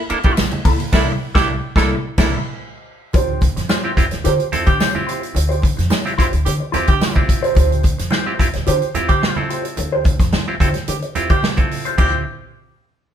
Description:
funk; 109 BPM; 4/4; straight; D minor; A4 = 440 Hz
breathy tenor saxophone; second line; 0.0-12.2 s; E4 to A4; -24 LUFS; right 6 dB
mellow electric guitar; accompaniment; 0.0-12.2 s; Bb3 to C5; -23 LUFS; equal; wah
overdriven clav; stabs; 0.1-12.2 s; Bb3 to A4; -24 LUFS; right 1 dB
upright bass; bass; 0.1-12.2 s; Bb1 to D3; -21 LUFS; equal
swinging big-band drum kit; drums; 0.1-12.1 s; crash cymbal, hi-hat, kick drum, ride cymbal, snare drum; -18 LUFS; equal
congas; percussion; 0.4-12.2 s; -28 LUFS; right 4 dB
tambourine; percussion; 0.4-7.1 s; -35 LUFS; left 5 dB
moderate stone room reverb, RT60 1.0 s; band playing live in one room; -15 LUFS; side -9 dB against mid
0.0-3.1 A section; 3.1-12.0 B section; 12.0-13.1 C section
band accent 0.9-3.1
0.0 C13; 3.1 Dm11

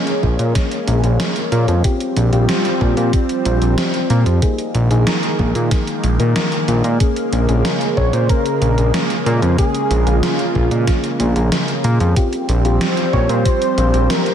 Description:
synthwave; 93 BPM; 4/4; straight; Bb dorian; A4 = 441 Hz
lush unison pad; sustained chords; 0.0-14.3 s; Db3 to Db4; -22 LUFS; equal; chorus, phaser, sidechain pumping
mellow FM electric piano; stabs; 0.0-14.3 s; Bb3 to Bb4; -23 LUFS; left 2 dB; chorus, ping-pong delay
gated 80s digital drum machine; drums; 0.1-14.3 s; hi-hat, snare drum; -23 LUFS; right 1 dB; gated reverb, gated reverb snare
fat analog bass; bass; 0.2-14.1 s; Bb1 to Bb2; -15 LUFS; equal
electronic kick drum; drums; 0.2-13.6 s; -17 LUFS; equal
wide unison lead; melody; 8.0-14.3 s; F4 to Db5; -21 LUFS; equal; diffuse ambient delay
moderate lush hall reverb, RT60 1.9 s, digital ambience; dreamy mix soaked in reverb; -14 LUFS; side -9 dB against mid
0.0-14.3 A section
0.0 Bbm7; 1.8 Fsus2/Bb; 4.4 Absus2/Bb; 7.0 Bbm7; 12.2 Fsus2/Bb

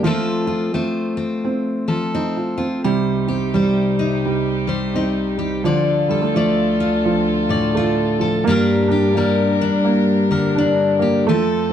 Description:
acoustic folk duo or small band; 85 BPM; 4/4; swing 62% on 8ths; G minor; A4 = 440 Hz
fingerpicked steel-string acoustic guitar; accompaniment; 0.0-11.7 s; G2 to D5; -18 LUFS; left 3 dB
felt-muted upright piano; arpeggios; 0.0-11.7 s; F3 to F4; -21 LUFS; right 6 dB
warm chamber string section; sustained chords; 2.8-11.7 s; C2 to Bb4; -25 LUFS; right 1 dB
moderate studio reverb, RT60 0.6 s; dark, warm production; -16 LUFS; side -9 dB against mid
0.0-11.7 A section
0.0 F; 2.8 Cm; 5.6 Dm; 8.5 Gm

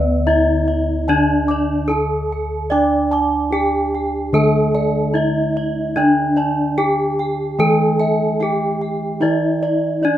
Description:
gamelan; 74 BPM; 4/4; straight; D pelog barang; A4 = 440 Hz
gamelan-type bronze metallophone; melody; 0.0-10.2 s; B3+20c to D5; -20 LUFS; equal; slapback echo
gamelan-type bronze metallophone; accompaniment; 0.0-10.2 s; D3 to D4; -24 LUFS; right 4 dB
gamelan-type bossed gongs; arpeggios; 0.0-10.2 s; D5 to D6; -22 LUFS; left 1 dB; plate reverb
gamelan-type bronze metallophone; arpeggios; 0.0-10.2 s; B4+20c to D6; -27 LUFS; right 5 dB; plate reverb
gamelan-type bossed gongs; bass; 0.0-10.1 s; D2 to D5; -22 LUFS; left 1 dB
moderate studio ambience, RT60 0.5 s; rough home demo mix; -15 LUFS; side -12 dB against mid
0.0-10.2 A section

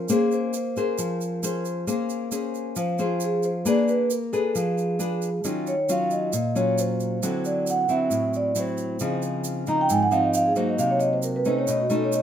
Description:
bossa nova; 135 BPM; 4/4; straight; Bb minor; A4 = 440 Hz
vibraphone with soft mallets; melody; 0.0-12.2 s; F4 to Bb5; -24 LUFS; right 2 dB
nylon-string guitar; accompaniment; 0.0-12.2 s; Ab2 to C5; -25 LUFS; left 2 dB
egg shaker; percussion; 0.1-12.2 s; -35 LUFS; right 8 dB
light reverb; minimal, uncompressed stereo recording; -22 LUFS; side -9 dB against mid
0.0-1.9 A section; 1.9-12.2 B section
vibraphone solo 1.9-12.2
0.0 Bbm9; 3.7 Bb7b9; 5.4 Ebm9; 7.2 D9; 9.0 Dbmaj9; 10.8 Cm7b5; 11.7 B9

